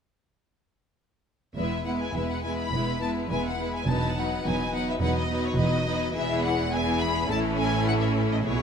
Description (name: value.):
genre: quick classical-period movement for symphony orchestra.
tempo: 105 BPM.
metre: 4/4.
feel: straight.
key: E major.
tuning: A4 = 440 Hz.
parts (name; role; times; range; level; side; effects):
rich chamber violin section; melody; 1.6-8.6 s; C#5 to B5; -31 LUFS; left 3 dB; none.
rich chamber violin section; second line; 1.6-8.6 s; D#4 to B4; -30 LUFS; left 5 dB; none.
rich chamber viola section; accompaniment; 1.6-8.6 s; E3 to C#4; -30 LUFS; right 2 dB; none.
rich studio double bass section; bass; 1.6-8.6 s; E1 to B1; -31 LUFS; right 3 dB; none.
rich symphonic cello section; bass; 1.6-8.6 s; E2 to B2; -32 LUFS; right 2 dB; none.
room: moderate concert hall reverb, RT60 2.3 s.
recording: close, detailed microphones.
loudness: -24 LUFS.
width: side -7 dB against mid.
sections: 1.6-8.6 A section.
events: none.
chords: 1.6 E; 3.9 B/E; 6.2 E; 7.3 A.